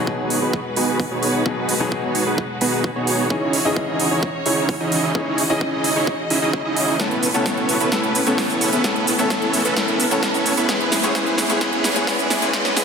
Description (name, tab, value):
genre	EDM, festival progressive house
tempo	130 BPM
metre	4/4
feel	straight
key	unclear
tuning	A4 = 440 Hz
part	clear baby grand piano	accompaniment	0.0-12.8 s	G#2 to D#5	-24 LUFS	left 3 dB	sidechain pumping, ping-pong delay
part	clear studio string section	sustained chords	0.0-12.8 s	E3 to D#5	-28 LUFS	equal	sidechain pumping
part	dense compressed supersaw	riff	0.0-12.8 s	B3 to E5	-21 LUFS	right 2 dB	sidechain pumping, low-pass filter, ping-pong delay
part	riser	sound effects	3.0-12.8 s	none	-33 LUFS	right 1 dB	none
part	electronic kick drum	drums	0.1-12.6 s	none	-25 LUFS	right 1 dB	high-pass filter on kick
part	big-room dance drum kit	drums	0.3-12.8 s	cabasa, hi-hat, snare drum	-22 LUFS	right 2 dB	overdrive
room	wet digital room reverb, RT60 1.1 s, digital ambience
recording	dense, heavily limited modern master, high-pass filter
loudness	-17 LUFS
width	side -6 dB against mid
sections	0.0-12.8 A section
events	build-up 0.0-12.8; filter sweep on supersaw synth 0.0-12.8; drum fill 7.0-12.8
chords	0.0 B6; 3.3 C#madd9; 7.0 Aadd9; 10.7 Eadd9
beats	0.07 0.54 1.00 | 1.46 1.92 2.38 2.84 | 3.30 3.77 4.23 4.69 | 5.15 5.61 6.07 6.54 | 7.00 7.46 7.92 8.38 | 8.84 9.30 9.77 10.23 | 10.69 11.15 11.61 12.07 | 12.54